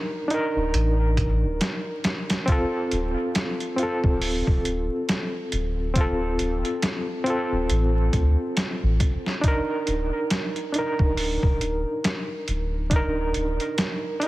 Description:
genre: trip hop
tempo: 69 BPM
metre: 4/4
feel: swing 59% on 16ths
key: D phrygian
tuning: A4 = 440 Hz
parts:
  - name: overdriven reed electric piano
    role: accompaniment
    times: 0.0-14.3 s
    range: C4 to Bb4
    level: -26 LUFS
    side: equal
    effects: fast tremolo, harmonic tremolo, tape echo
  - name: trip hop sampler-style drum kit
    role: drums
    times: 0.3-14.3 s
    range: hi-hat, kick drum, snare drum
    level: -25 LUFS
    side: equal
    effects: overdrive
  - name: warm sub bass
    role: bass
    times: 0.6-13.6 s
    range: D1 to D2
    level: -24 LUFS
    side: equal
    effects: none
room: light reverb, digital ambience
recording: heavily compressed radio sound, multiband compression, vinyl crackle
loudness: -22 LUFS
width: side -17 dB against mid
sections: 0.0-14.3 A section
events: none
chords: 0.0 Bbadd11/D; 2.5 Dm7; 9.4 Bbadd11/D

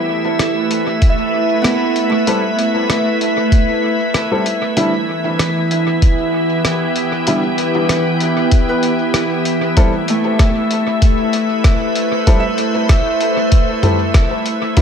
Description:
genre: ambient dub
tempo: 96 BPM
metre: 4/4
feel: swing 55% on 16ths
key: A minor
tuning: A4 = 440 Hz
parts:
  - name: soft additive organ-like pad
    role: sustained chords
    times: 0.0-14.8 s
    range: E3 to C5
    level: -17 LUFS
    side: right 1 dB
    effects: ensemble chorus, built-in reverb
  - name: Celtic harp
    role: arpeggios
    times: 0.0-14.2 s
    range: A3 to E5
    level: -22 LUFS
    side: equal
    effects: tape echo
  - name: drifting glass-harmonics texture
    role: texture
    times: 0.0-14.8 s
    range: E5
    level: -24 LUFS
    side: left 3 dB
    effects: chorus, built-in reverb
  - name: lo-fi sampler-style drum kit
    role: drums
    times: 0.4-14.8 s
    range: hi-hat, rim click, toms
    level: -22 LUFS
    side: equal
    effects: small room ambience, dub echo
  - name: electronic kick drum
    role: drums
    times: 1.0-14.8 s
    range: none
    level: -12 LUFS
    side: equal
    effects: small room ambience
  - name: warm upright piano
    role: stabs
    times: 2.3-14.8 s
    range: D3 to A4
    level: -22 LUFS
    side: left 1 dB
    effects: dub echo
room: light reverb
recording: echo-heavy mix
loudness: -13 LUFS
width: side -7 dB against mid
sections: 0.0-9.8 A section; 9.8-14.8 B section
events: none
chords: 0.0 A7(no3); 4.8 Em; 9.8 Am7

